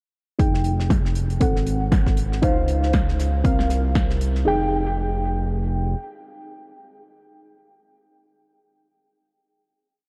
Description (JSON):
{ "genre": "deep house", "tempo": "118 BPM", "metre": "4/4", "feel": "swing 57% on 16ths", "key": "F minor", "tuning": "A4 = 441 Hz", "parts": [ { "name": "deep mellow chord stab", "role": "stabs", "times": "0.4-9.0 s", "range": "C4 to G5", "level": "-28 LUFS", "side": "equal", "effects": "chorus, cassette tape, sidechain pumping, tape echo" }, { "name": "smooth synth bass", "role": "bass", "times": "0.4-5.9 s", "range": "F1 to Db2", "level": "-26 LUFS", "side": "equal", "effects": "sidechain pumping" }, { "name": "damped 70s drum kit", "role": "drums", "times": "0.4-4.5 s", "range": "hi-hat, snare drum", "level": "-42 LUFS", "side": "equal", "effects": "sidechain pumping on hats, high-pass filter on hats, high-pass filter on snare, high-pass filter on room" }, { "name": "electronic kick drum", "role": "drums", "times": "0.4-4.1 s", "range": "none", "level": "-23 LUFS", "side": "equal", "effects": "overdrive" }, { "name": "electronic snare drum", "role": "drums", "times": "0.9-4.1 s", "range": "none", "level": "-32 LUFS", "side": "equal", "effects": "low-pass filter on snare, low-pass filter on room" } ], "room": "moderate huge ambient reverb, RT60 4.9 s", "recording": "dreamy mix soaked in reverb", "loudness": "-22 LUFS", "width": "mono", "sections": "0.4-4.5 breakdown; 4.5-8.5 final chord", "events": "none", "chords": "0.4 Fm9; 1.4 Ab7b9; 2.4 Dbmaj9; 3.4 C7sus4; 4.5 Fm9" }